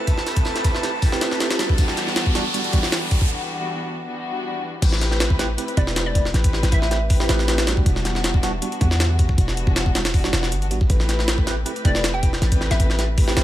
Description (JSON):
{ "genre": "drum and bass, jungle", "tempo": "158 BPM", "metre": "4/4", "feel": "straight", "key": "A minor", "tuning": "A4 = 441 Hz", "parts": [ { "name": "dark studio string section", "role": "sustained chords", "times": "0.0-13.4 s", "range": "E3 to B4", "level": "-28 LUFS", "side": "left 1 dB", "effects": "low-pass filter" }, { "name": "riser", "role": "sound effects", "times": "0.1-3.3 s", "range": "none", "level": "-28 LUFS", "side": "equal", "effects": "none" }, { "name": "drifting glass-harmonics texture", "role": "texture", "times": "0.0-3.3 s", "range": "A4 to A5", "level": "-32 LUFS", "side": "right 2 dB", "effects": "chorus, built-in reverb" }, { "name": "crunchy breakbeat drum kit", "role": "drums", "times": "0.1-3.2 s", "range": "hi-hat, snare drum, tambourine", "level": "-38 LUFS", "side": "right 3 dB", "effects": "none" }, { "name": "jungle sampler-style drum kit", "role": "drums", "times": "0.1-13.4 s", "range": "crash cymbal, hi-hat, kick drum, snare drum", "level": "-20 LUFS", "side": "equal", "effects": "studio reverb" }, { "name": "tine electric piano", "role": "stabs", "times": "0.8-2.8, 5.4-13.4 s", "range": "G3 to B4", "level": "-29 LUFS", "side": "right 3 dB", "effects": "phaser, dub echo" }, { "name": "warm 808-style bass", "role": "bass", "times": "4.8-13.4 s", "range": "E1 to E2", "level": "-22 LUFS", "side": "equal", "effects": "none" }, { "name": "hollow square pluck", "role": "melody", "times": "5.8-7.3, 11.9-13.2 s", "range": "D5 to G5", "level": "-29 LUFS", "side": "left 1 dB", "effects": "chorus, dub echo" } ], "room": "light reverb, small room ambience", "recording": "none", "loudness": "-18 LUFS", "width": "side -13 dB against mid", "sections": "0.0-4.8 A section; 4.8-13.4 B section", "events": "build-up 0.0-4.8; riser 0.1-3.3; break 3.3-4.8; drop 4.8-13.4", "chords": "0.0 Am7; 1.8 Em7; 4.8 Am7; 7.9 Em7; 10.9 Am7" }